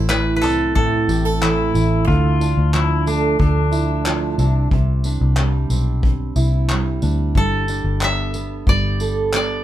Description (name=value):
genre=acoustic pop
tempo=91 BPM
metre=4/4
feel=straight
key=unclear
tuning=A4 = 441 Hz
part: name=koto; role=melody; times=0.0-2.7, 7.4-9.6 s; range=A4 to E5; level=-23 LUFS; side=left 2 dB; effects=none
part: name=fingerpicked steel-string acoustic guitar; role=accompaniment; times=0.0-9.6 s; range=A2 to A4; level=-21 LUFS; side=right 4 dB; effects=none
part: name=vintage muted fingered electric bass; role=bass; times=0.0-9.6 s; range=G1 to D2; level=-19 LUFS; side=left 1 dB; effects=none
part: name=soft brush drum kit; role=drums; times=0.1-9.5 s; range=handclaps, kick drum, tambourine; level=-22 LUFS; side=left 1 dB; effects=none
part: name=pedal steel guitar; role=second line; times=1.4-4.7 s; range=D4 to F4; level=-24 LUFS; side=left 7 dB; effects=none
room=light reverb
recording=band playing live in one room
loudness=-16 LUFS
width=side -12 dB against mid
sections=0.0-9.6 A section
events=none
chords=0.0 Am; 2.1 Dmadd9; 4.4 Cadd9; 7.4 Gadd9